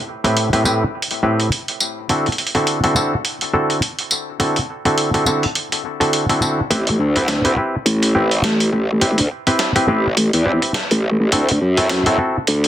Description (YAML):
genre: glitch hop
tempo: 104 BPM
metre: 4/4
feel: swing 57% on 16ths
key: A dorian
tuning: A4 = 439 Hz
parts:
  - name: mellow clav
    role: stabs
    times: 0.2-12.4 s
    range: A2 to B4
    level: -18 LUFS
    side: equal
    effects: sidechain pumping, low-pass filter, ping-pong delay
  - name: boom bap sampler-style drum kit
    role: drums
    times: 0.2-12.7 s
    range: hi-hat, snare drum, tambourine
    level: -20 LUFS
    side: right 1 dB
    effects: high-pass filter on perc, high-pass filter on hats, high-pass filter on snare, high-pass filter on room
  - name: growl bass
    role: bass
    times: 6.7-12.7 s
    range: A1 to F#2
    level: -16 LUFS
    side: equal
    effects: chorus, high-pass filter
  - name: electronic kick drum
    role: drums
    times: 6.7-12.3 s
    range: none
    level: -28 LUFS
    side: equal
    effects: none
room: wet studio ambience, RT60 0.5 s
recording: dense, heavily limited modern master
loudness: -15 LUFS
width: side -11 dB against mid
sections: 0.0-6.7 A section; 6.7-12.7 B section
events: build-up 6.7-12.7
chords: 0.0 Am7; 2.1 D7; 6.7 Am7; 11.3 D7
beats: 0.36 0.94 1.52 | 2.09 2.67 3.25 3.83 | 4.40 4.98 5.56 6.13 | 6.71 7.29 7.86 8.44 | 9.02 9.59 10.17 10.75 | 11.32 11.90 12.48